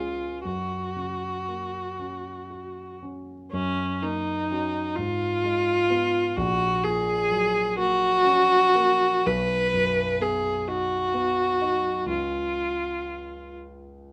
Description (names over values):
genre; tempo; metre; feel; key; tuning
classical, romantic duo for viola and grand piano; 38-44 BPM (dotted quarters); 6/8; rubato; F# major; A4 = 440 Hz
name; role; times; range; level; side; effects
warm viola; melody; 0.0-13.6 s; C#4 to B4; -26 LUFS; equal; none
dark concert grand piano; accompaniment; 0.0-14.1 s; A#1 to G#4; -34 LUFS; equal; none
room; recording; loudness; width
moderate large studio reverb, RT60 1.2 s; none; -25 LUFS; mono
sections
0.0-3.5 A section; 3.5-14.1 A section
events
none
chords
0.5 F#; 5.0 Fdim/Ab; 6.4 F#/A#; 9.2 B; 12.1 C#